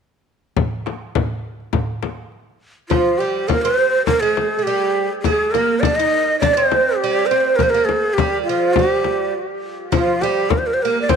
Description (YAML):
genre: Arabic maqam ensemble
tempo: 102 BPM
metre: 4/4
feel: straight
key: G maqam bayati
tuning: A4 = 440 Hz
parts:
  - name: darbuka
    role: percussion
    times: 0.6-2.4 s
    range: none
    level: -27 LUFS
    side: right 3 dB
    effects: none
  - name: frame drum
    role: percussion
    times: 0.6-11.2 s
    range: none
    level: -21 LUFS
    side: left 7 dB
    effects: none
  - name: breathy ney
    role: melody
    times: 2.9-11.2 s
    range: F4 to Eb5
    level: -18 LUFS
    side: equal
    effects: tape echo
  - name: oud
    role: second line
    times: 2.9-11.2 s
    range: F3 to Eb4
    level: -20 LUFS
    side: right 8 dB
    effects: none
room: wet echo chamber reverb, RT60 1.4 s, small room ambience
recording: 1960s-style stereo with parts hard left and right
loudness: -16 LUFS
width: side -6 dB against mid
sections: 0.6-2.9 A section; 2.9-11.2 B section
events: none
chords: none